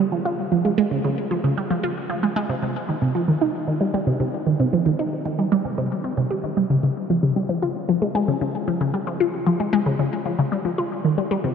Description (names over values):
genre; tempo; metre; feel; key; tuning
ambient; 114 BPM; 4/4; straight; unclear; A4 = 439 Hz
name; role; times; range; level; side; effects
resonant blip pluck; solo; 0.0-11.5 s; C3 to G4; -20 LUFS; equal; phaser, ping-pong delay
room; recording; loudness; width
wet huge ambient reverb, RT60 8.3 s; dark, warm production; -20 LUFS; side -7 dB against mid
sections
0.0-6.7 A section; 6.7-11.5 B section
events
none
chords
none